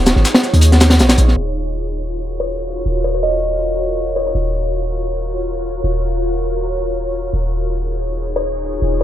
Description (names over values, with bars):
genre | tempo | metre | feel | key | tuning
drum and bass, jungle | 161 BPM | 4/4 | swing 54% on 16ths | Eb minor | A4 = 436 Hz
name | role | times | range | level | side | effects
ethereal airy pad | sustained chords | 0.0-9.0 s | Eb4 to Db5 | -22 LUFS | equal | ensemble chorus, built-in reverb, vintage 12-bit sampler grit
warm 808-style bass | bass | 0.0-9.0 s | Eb1 to Eb2 | -18 LUFS | equal | tube saturation
breakbeat sampler-style drum kit | drums | 0.1-1.3 s | hi-hat, shaker, snare drum | -22 LUFS | left 2 dB | high-pass filter on perc, high-pass filter on snare, high-pass filter on hats
crunchy breakbeat drum kit | drums | 0.1-1.4 s | hi-hat, snare drum | -13 LUFS | equal | none
buzzing kalimba | melody | 2.4-4.3, 8.4-9.0 s | Db5 to Eb5 | -22 LUFS | left 1 dB | dub echo
room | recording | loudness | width
light reverb, small room ambience | low-pass filter | -15 LUFS | side -12 dB against mid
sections
0.0-1.4 A section; 1.4-9.0 B section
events
filter sweep 1.4-9.0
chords
0.0 Dbadd9/Eb; 1.4 Ebm7; 7.3 Dbadd9/Eb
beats
0.25 0.62 0.99 | 1.37 1.74 2.11 2.49 | 2.86 3.23 3.60 3.98 | 4.35 4.72 5.09 5.47 | 5.84 6.21 6.58 6.96 | 7.33 7.70 8.08 8.45 | 8.82